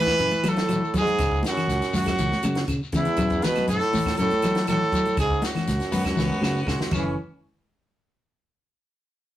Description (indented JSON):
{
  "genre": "afrobeat",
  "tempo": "121 BPM",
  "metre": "4/4",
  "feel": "straight",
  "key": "F# minor",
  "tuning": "A4 = 443 Hz",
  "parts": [
    { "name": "clear trumpet", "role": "melody", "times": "0.0-7.2 s", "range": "C#4 to B4", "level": "-25 LUFS", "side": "equal", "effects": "none" },
    { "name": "clear trombone", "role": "second line", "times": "0.0-7.2 s", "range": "E2 to E3", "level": "-29 LUFS", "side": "right 2 dB", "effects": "none" },
    { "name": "electric guitar at the edge of break-up", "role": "arpeggios", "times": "0.0-7.1 s", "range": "E3 to G#3", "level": "-30 LUFS", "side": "left 4 dB", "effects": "none" },
    { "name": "fingered electric bass", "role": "bass", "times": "0.0-7.1 s", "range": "F#1 to F#3", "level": "-27 LUFS", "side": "equal", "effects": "none" },
    { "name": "compact cocktail drum kit", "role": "drums", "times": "0.1-7.0 s", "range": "crash cymbal, hi-hat, kick drum, snare drum", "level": "-32 LUFS", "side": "equal", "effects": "none" },
    { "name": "claves", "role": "percussion", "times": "0.1-7.0 s", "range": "none", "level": "-40 LUFS", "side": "right 6 dB", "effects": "none" },
    { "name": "shekere", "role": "percussion", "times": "0.1-7.0 s", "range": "none", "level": "-36 LUFS", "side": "left 3 dB", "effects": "none" },
    { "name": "congas", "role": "percussion", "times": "0.3-7.0 s", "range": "none", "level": "-31 LUFS", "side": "equal", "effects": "none" },
    { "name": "raspy baritone saxophone", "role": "second line", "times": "5.9-7.1 s", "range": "G#3 to B3", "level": "-34 LUFS", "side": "left 2 dB", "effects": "none" }
  ],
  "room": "moderate studio reverb, RT60 0.6 s",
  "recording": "rough rehearsal-room recording, tube saturation",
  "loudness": "-21 LUFS",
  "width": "side -13 dB against mid",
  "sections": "0.0-7.2 A section; 7.2-9.2 B section",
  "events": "drum fill 6.2-7.2",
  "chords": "0.0 F#m7; 1.2 C#sus4; 3.2 F#m7; 5.2 C#7sus4; 6.9 F#m7; 7.2 N.C."
}